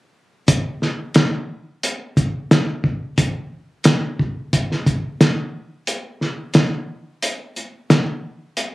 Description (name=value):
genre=hip hop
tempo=89 BPM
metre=4/4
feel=swing 55% on 16ths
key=none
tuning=none
part: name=cloth-damped thuddy drum kit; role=drums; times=0.5-8.7 s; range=hi-hat, kick drum, snare drum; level=-16 LUFS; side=equal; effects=none
room=light reverb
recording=recorded on a phone in the room, club reverb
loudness=-18 LUFS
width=side -19 dB against mid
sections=0.5-5.9 A section; 5.9-8.7 B section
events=kick muted 5.9-8.7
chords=none